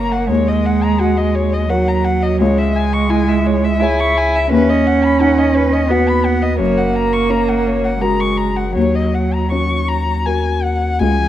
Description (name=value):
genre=neoclassical piano and strings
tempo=79-87 BPM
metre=3/4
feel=rubato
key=unclear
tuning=A4 = 440 Hz
part: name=muted violin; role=melody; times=0.0-11.3 s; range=B4 to C#6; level=-20 LUFS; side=left 4 dB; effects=none
part: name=muted cello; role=second line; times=0.0-11.3 s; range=E3 to E4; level=-17 LUFS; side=right 4 dB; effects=none
part: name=felt-muted upright piano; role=accompaniment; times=0.0-11.3 s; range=C#2 to C#5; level=-20 LUFS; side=left 4 dB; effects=none
part: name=soft dub sub bass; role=bass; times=0.0-11.3 s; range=F#1 to D#2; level=-20 LUFS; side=equal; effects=none
room=light reverb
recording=rough home demo mix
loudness=-13 LUFS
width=side -12 dB against mid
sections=0.0-11.0 A section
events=none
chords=0.3 D#m7; 2.4 C#m; 4.5 B/D#; 6.6 F#; 8.8 D#m7